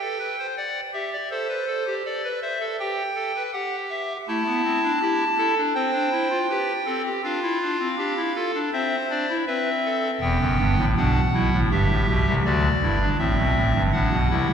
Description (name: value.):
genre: classical, baroque-style 4-part fugue for pipe organ.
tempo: 81 BPM.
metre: 4/4.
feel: straight.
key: A minor.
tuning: A4 = 441 Hz.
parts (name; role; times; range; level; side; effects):
pipe organ, clarinet reed; solo; 0.0-14.5 s; E1 to A5; -21 LUFS; equal; none.
room: wet church reverb, RT60 2.8 s.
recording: heard from further back in the room.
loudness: -21 LUFS.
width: side -8 dB against mid.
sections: 0.0-14.5 A section.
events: none.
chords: 0.0 G; 1.3 Am; 2.8 Em/G; 4.3 A5; 5.8 C5; 7.2 Dm; 8.7 Am/C; 10.2 Em; 11.7 G.